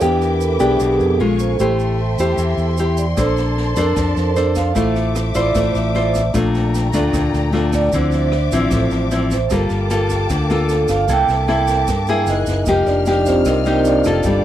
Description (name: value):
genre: bossa nova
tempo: 152 BPM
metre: 4/4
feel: straight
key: D minor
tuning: A4 = 441 Hz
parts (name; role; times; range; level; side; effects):
- nylon-string guitar; accompaniment; 0.0-14.4 s; G2 to C5; -18 LUFS; left 2 dB; none
- vibraphone with soft mallets; accompaniment; 0.0-14.4 s; C4 to G5; -20 LUFS; right 4 dB; none
- warm symphonic string section; sustained chords; 0.0-14.4 s; A3 to F#6; -27 LUFS; left 1 dB; none
- fingered electric bass; bass; 0.0-14.4 s; F1 to G2; -20 LUFS; equal; none
- tube shaker; percussion; 0.0-14.4 s; none; -35 LUFS; right 12 dB; none
- open jazz drum kit; drums; 3.2-14.3 s; kick drum, rim click, snare drum; -27 LUFS; equal; none
room: little or no reverb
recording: dry, close 1970s-style studio recording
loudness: -15 LUFS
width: side -12 dB against mid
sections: 0.0-9.5 A section; 9.5-14.4 A section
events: vibraphone solo 0.0-14.4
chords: 0.0 Em7; 1.2 Bbm7; 1.6 Am7; 3.2 Bbmaj9; 4.8 Dm9/A; 6.3 Gm9/Bb; 7.9 Dm9; 9.5 Gm9; 11.1 C13; 12.3 F#9; 12.7 F9sus4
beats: | 0.01 0.41 0.80 1.20 | 1.59 1.99 2.38 2.78 | 3.18 3.57 3.97 4.36 | 4.76 5.15 5.55 5.95 | 6.34 6.74 7.13 7.53 | 7.92 8.32 8.71 9.11 | 9.50 9.90 10.29 10.69 | 11.08 11.48 11.87 12.27 | 12.66 13.06 13.45 13.85 | 14.24